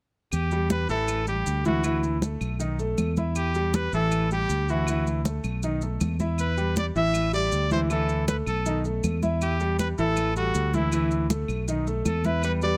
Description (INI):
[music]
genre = latin, salsa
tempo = 158 BPM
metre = 4/4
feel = straight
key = E minor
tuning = A4 = 440 Hz
[part]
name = bright trumpet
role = melody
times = 0.3-12.8 s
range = E4 to E5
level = -31 LUFS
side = equal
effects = none
[part]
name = fingered electric bass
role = bass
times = 0.3-12.8 s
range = A1 to E2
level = -29 LUFS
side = equal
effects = none
[part]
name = claves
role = percussion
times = 0.3-12.6 s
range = none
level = -44 LUFS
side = equal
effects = none
[part]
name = congas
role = percussion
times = 0.3-12.8 s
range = none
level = -33 LUFS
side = equal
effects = none
[part]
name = maracas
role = percussion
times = 0.3-12.8 s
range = none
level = -41 LUFS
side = equal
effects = none
[part]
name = clear baby grand piano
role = accompaniment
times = 0.5-12.8 s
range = D#3 to E5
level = -31 LUFS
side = equal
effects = none
[sound]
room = little or no reverb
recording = close, detailed microphones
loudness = -26 LUFS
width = mono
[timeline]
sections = 0.3-12.4 A section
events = none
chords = 0.3 Em; 1.1 A5; 1.8 Dsus2; 2.6 B7; 3.4 Em; 4.1 A5; 4.9 Dsus2; 5.6 B7; 6.4 Em; 7.1 A5; 7.9 Dsus2; 8.7 B7; 9.4 Em; 10.2 A5; 10.9 Dsus2; 11.7 B7